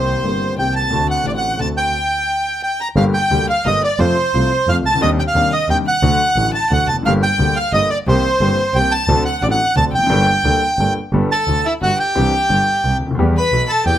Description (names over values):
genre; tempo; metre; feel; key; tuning
tango; 176 BPM; 3/4; rubato; G minor; A4 = 440 Hz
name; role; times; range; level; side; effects
bandoneon; melody; 0.0-14.0 s; C5 to B5; -18 LUFS; right 3 dB; none
rich violin; second line; 0.0-14.0 s; E4 to Bb5; -22 LUFS; left 6 dB; none
clear concert grand piano; accompaniment; 0.0-14.0 s; G1 to A4; -21 LUFS; left 3 dB; none
clear double bass; bass; 0.0-14.0 s; F1 to F2; -19 LUFS; right 1 dB; none
room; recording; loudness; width
light reverb; none; -14 LUFS; side -11 dB against mid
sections
0.0-3.0 A section; 3.0-11.1 A section; 11.1-14.0 B section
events
none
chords
0.0 Cm7; 0.9 D7; 1.9 N.C.; 3.0 Gm; 4.0 F; 5.0 Cmadd9/Eb; 6.0 D; 7.1 Gm; 8.1 Cm7; 9.1 D7; 10.1 Gmadd9; 11.1 Gadd9; 12.2 Cadd9; 13.2 Em